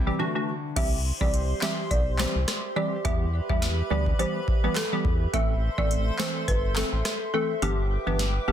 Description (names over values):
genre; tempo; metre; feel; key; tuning
dancehall; 105 BPM; 4/4; swing 56% on 16ths; unclear; A4 = 440 Hz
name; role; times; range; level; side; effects
wavetable chord stab; accompaniment; 0.0-8.5 s; E3 to A4; -30 LUFS; right 1 dB; none
nylon-string guitar; arpeggios; 0.0-1.3 s; C3 to E4; -37 LUFS; left 5 dB; digital delay
round analog bass; bass; 0.0-8.5 s; F#1 to E2; -27 LUFS; equal; none
folk marimba with medium mallets; melody; 0.8-8.5 s; G4 to E5; -31 LUFS; left 1 dB; digital delay
hollow soft pad; sustained chords; 0.8-8.5 s; G4 to D6; -35 LUFS; right 1 dB; chorus
booming analog drum machine; drums; 0.8-8.3 s; crash cymbal, handclaps, hi-hat, kick drum, rim click, snare drum; -27 LUFS; equal; overdrive
room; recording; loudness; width
light reverb, digital ambience; dense, heavily limited modern master; -23 LUFS; side -10 dB against mid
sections
0.8-8.5 A section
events
break 0.2-0.8; kick muted 7.6-8.5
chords
0.2 Dadd9; 0.8 C; 3.1 Em; 5.3 Am; 7.6 G6